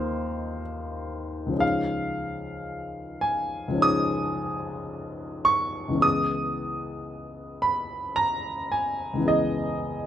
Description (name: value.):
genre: classical, impressionist solo piano.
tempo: 49-59 BPM.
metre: 4/4.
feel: rubato.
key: unclear.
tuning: A4 = 440 Hz.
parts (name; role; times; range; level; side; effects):
warm baby grand piano; solo; 0.0-10.1 s; C#2 to D#6; -25 LUFS; equal; none.
room: light reverb.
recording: none.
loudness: -24 LUFS.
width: side -10 dB against mid.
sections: 0.0-10.1 A section.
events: none.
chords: 0.0 D#sus2; 1.6 C#add9; 6.0 Emaj7/C#.